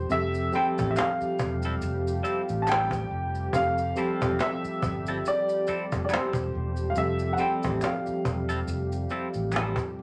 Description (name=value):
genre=R&B, neo-soul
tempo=70 BPM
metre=4/4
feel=swing 57% on 16ths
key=F major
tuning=A4 = 438 Hz
part: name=warm baby grand piano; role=melody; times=0.0-9.5 s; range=C5 to A5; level=-32 LUFS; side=equal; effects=none
part: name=tine electric piano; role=accompaniment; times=0.0-10.0 s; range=F3 to G5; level=-35 LUFS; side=equal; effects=medium tremolo
part: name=warm analog pad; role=sustained chords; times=0.0-10.0 s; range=F3 to G4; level=-37 LUFS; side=equal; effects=chorus
part: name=fretless electric bass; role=bass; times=0.0-9.7 s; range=E1 to A1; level=-34 LUFS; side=equal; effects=none
part: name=cajon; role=drums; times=0.1-10.0 s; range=none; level=-33 LUFS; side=equal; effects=none
part: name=maracas and finger snaps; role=percussion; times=0.1-9.9 s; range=none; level=-48 LUFS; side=equal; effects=none
part: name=clean electric guitar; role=second line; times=0.6-9.8 s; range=G3 to A4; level=-36 LUFS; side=equal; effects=phaser
room=wet studio reverb, RT60 0.6 s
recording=none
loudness=-27 LUFS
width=mono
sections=0.0-10.0 A section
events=none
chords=0.0 Fmaj9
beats=| 0.10 0.96 1.81 2.67 | 3.53 4.38 5.24 6.10 | 6.96 7.81 8.67 9.53